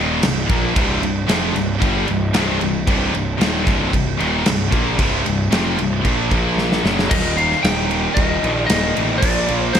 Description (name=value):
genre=hard rock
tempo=113 BPM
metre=4/4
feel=straight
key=unclear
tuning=A4 = 440 Hz
part: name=heavy high-gain guitar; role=riff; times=0.0-7.1 s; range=C2 to Bb3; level=-23 LUFS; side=equal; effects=distortion
part: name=high-gain distorted guitar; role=riff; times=0.0-9.8 s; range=C2 to Bb3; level=-21 LUFS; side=equal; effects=distortion
part: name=fuzz picked electric bass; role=bass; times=0.0-9.8 s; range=C1 to Bb1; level=-22 LUFS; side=equal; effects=overdrive
part: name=big rock drum kit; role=drums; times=0.2-9.8 s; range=crash cymbal, kick drum, snare drum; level=-20 LUFS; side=equal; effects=none
part: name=lightly driven lead guitar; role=melody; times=7.1-9.8 s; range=C5 to G5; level=-21 LUFS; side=left 2 dB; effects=none
room=light reverb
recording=none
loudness=-16 LUFS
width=side -8 dB against mid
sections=0.0-7.1 A section; 7.1-9.8 B section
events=drum fill 6.6-7.1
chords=0.0 C5; 6.3 Bb5; 6.8 F#5; 7.1 Eb; 9.2 Bb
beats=0.23 | 0.76 1.29 1.82 2.35 | 2.88 3.40 3.93 4.46 | 4.99 5.52 6.05 6.58 | 7.11 7.64 8.17 8.70 | 9.23 9.76